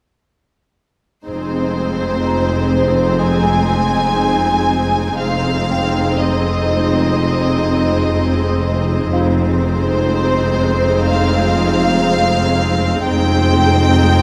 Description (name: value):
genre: cinematic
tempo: 61 BPM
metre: 4/4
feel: straight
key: F minor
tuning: A4 = 440 Hz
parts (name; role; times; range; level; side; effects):
- clear studio violin section; melody; 1.3-14.2 s; C5 to Ab5; -22 LUFS; equal; none
- rich studio violin section; second line; 1.3-14.2 s; Eb4 to C5; -24 LUFS; equal; none
- clear symphonic viola section; accompaniment; 1.3-14.2 s; Ab3 to C4; -23 LUFS; equal; none
- clear studio double bass section; bass; 1.3-14.2 s; F1; -23 LUFS; equal; none
- rich studio cello section; bass; 1.3-14.2 s; F2; -22 LUFS; equal; none
- worn celesta; texture; 2.3-14.2 s; F4 to Bb5; -31 LUFS; equal; none
room: moderate scoring stage reverb, RT60 1.6 s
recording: none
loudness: -16 LUFS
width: mono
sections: 1.3-14.2 A section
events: none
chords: 1.3 Fm7